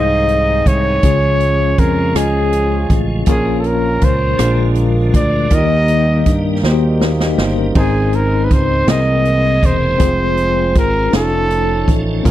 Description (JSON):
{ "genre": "slow gospel", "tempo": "54 BPM (dotted quarters)", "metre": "6/8", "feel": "straight", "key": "Ab major", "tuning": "A4 = 440 Hz", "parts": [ { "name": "clear trumpet", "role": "melody", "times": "0.0-11.9 s", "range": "Ab4 to D#5", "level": "-17 LUFS", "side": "right 1 dB", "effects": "slapback echo" }, { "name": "bell-like tine electric piano", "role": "accompaniment", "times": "0.0-12.3 s", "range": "Ab2 to F5", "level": "-18 LUFS", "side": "left 3 dB", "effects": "medium stereo tremolo" }, { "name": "hand-pumped harmonium", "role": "sustained chords", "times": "0.0-12.3 s", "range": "C3 to Eb4", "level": "-29 LUFS", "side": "right 1 dB", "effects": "none" }, { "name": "tonewheel organ", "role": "sustained chords", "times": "0.0-12.3 s", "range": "C3 to A4", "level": "-26 LUFS", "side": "right 4 dB", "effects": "slow rotary speaker, overdrive, chorus vibrato" }, { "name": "fingered electric bass", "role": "bass", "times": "0.0-12.3 s", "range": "E1 to G2", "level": "-17 LUFS", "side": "equal", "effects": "none" }, { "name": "swinging big-band drum kit", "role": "drums", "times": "0.3-12.3 s", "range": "crash cymbal, hi-hat, kick drum, rim click, snare drum", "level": "-16 LUFS", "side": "right 1 dB", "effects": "none" } ], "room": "little or no reverb", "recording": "dry, close 1970s-style studio recording", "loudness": "-12 LUFS", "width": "side -13 dB against mid", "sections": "0.0-12.3 A section", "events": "drum fill 6.6-7.8", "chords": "0.0 Ab; 1.0 Db; 3.3 Bbm; 4.4 Bb7; 5.5 Eb; 7.8 Ab; 8.9 C7alt; 10.0 Fm; 11.1 Faug7", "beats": "| 1.03 2.15 | 3.27 4.39 | 5.52 6.64 | 7.76 8.88 | 10.01 11.13 | 12.26" }